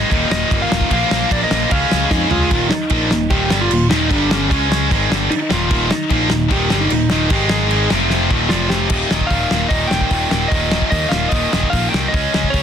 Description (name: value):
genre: punk rock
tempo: 150 BPM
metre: 4/4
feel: straight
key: Eb major, Eb mixolydian from 8.9 s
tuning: A4 = 440 Hz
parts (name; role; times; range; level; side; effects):
- lightly driven lead guitar; melody; 0.0-12.6 s; Db4 to G5; -21 LUFS; equal; none
- heavy high-gain guitar; riff; 0.0-2.5, 5.7-8.9 s; Eb2 to Ab4; -24 LUFS; left 1 dB; distortion
- tight distorted guitar; riff; 0.0-12.6 s; Eb2 to Db4; -21 LUFS; left 14 dB; distortion
- tight distorted guitar; riff; 0.0-12.6 s; Eb2 to Db4; -21 LUFS; right 15 dB; distortion
- picked electric bass; bass; 0.0-12.6 s; Eb1 to F2; -22 LUFS; equal; none
- loose indie drum kit; drums; 0.1-12.6 s; crash cymbal, hi-hat, kick drum, ride cymbal, snare drum, toms; -20 LUFS; equal; none
room: little or no reverb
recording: dense, heavily limited modern master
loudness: -14 LUFS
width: side -8 dB against mid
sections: 0.0-2.5 A section; 2.5-8.9 B section; 8.9-12.6 C section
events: drum fill 2.1-2.5, 8.1-8.9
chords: 0.1 Eb; 0.9 Bb; 1.7 Db; 2.5 Eb; 4.1 G5; 4.5 Db5; 4.9 Eb; 7.3 Ab5; 7.9 F5; 8.3 Eb5; 8.5 F5; 8.9 Eb